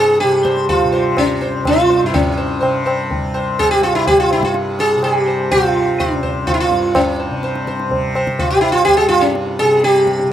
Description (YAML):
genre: indian classical, Hindustani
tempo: 125 BPM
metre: 5/4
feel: straight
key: unclear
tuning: A4 = 440 Hz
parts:
  - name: sitar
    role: melody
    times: 0.0-10.3 s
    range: Db4 to C5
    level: -14 LUFS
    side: equal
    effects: slapback echo
  - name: tanpura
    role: drone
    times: 0.0-10.3 s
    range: C2 to C3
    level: -22 LUFS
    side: equal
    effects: stereo widening
  - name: tabla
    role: percussion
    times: 0.2-10.3 s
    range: none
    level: -22 LUFS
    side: equal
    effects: none
room: little or no reverb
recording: recorded outdoors, with no room sound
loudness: -13 LUFS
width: side -10 dB against mid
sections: 0.0-10.3 A section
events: none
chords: none